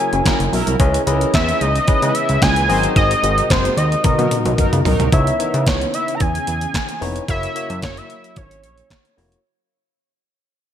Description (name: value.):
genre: early-eighties boogie funk.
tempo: 111 BPM.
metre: 4/4.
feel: straight.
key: C# dorian.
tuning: A4 = 436 Hz.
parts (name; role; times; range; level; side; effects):
fat analog lead; melody; 0.0-9.2 s; B#4 to A#5; -20 LUFS; equal; chorus.
barky tine electric piano; accompaniment; 0.0-9.4 s; A#3 to E5; -23 LUFS; left 4 dB; overdrive.
soft string machine; sustained chords; 0.0-9.4 s; B#2 to D#5; -30 LUFS; equal; none.
fat analog bass; bass; 0.1-9.4 s; E#1 to C#3; -20 LUFS; equal; none.
detuned 8-bit digital drum machine; drums; 0.1-9.4 s; handclaps, hi-hat, kick drum, snare drum, toms; -19 LUFS; equal; overdrive, gated reverb.
analog synth brass; second line; 0.3-5.1 s; F#3 to B#4; -26 LUFS; right 2 dB; chorus, digital delay.
room: light reverb.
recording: bright 1980s-style digital production.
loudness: -15 LUFS.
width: side -9 dB against mid.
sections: 0.0-5.1 A section; 5.1-9.4 B section.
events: drum fill 4.0-5.1; fade-out 5.1-9.4.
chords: 0.0 F#7; 0.8 C#m9; 2.7 G#9; 4.0 Bmaj7; 5.1 C#m9; 7.3 F#7.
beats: 0.26 | 0.80 1.34 1.88 2.42 | 2.96 3.50 4.04 4.58 | 5.12 5.66 6.20 6.75 | 7.29 7.83 8.37 8.91.